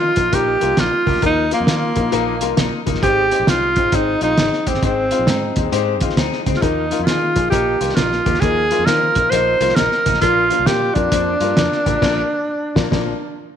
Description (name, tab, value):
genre	uptempo 1960s-style soul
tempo	134 BPM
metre	4/4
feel	swing 65% on 8ths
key	Eb major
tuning	A4 = 441 Hz
part	breathy tenor saxophone	melody	0.0-13.4 s	Bb3 to C5	-17 LUFS	right 2 dB	none
part	clear upright piano	accompaniment	0.0-13.1 s	F3 to C5	-23 LUFS	left 9 dB	none
part	electric guitar through a small old amp	riff	0.0-12.0 s	Bb3 to Ab4	-27 LUFS	left 10 dB	spring reverb
part	fingered electric bass	bass	0.0-13.1 s	Gb1 to Eb3	-25 LUFS	right 1 dB	none
part	cloth-damped thuddy drum kit	drums	0.2-13.1 s	crash cymbal, hi-hat, kick drum, snare drum	-20 LUFS	right 1 dB	none
part	congas	percussion	0.3-11.9 s	none	-31 LUFS	right 12 dB	none
room	moderate echo chamber reverb, RT60 1.4 s, small room ambience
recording	1960s-style stereo with parts hard left and right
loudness	-14 LUFS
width	side -8 dB against mid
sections	0.0-13.6 A section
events	band accent 12.0-13.6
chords	0.0 Ebsus2; 3.0 Ab; 6.6 Ebsus2; 10.2 Bb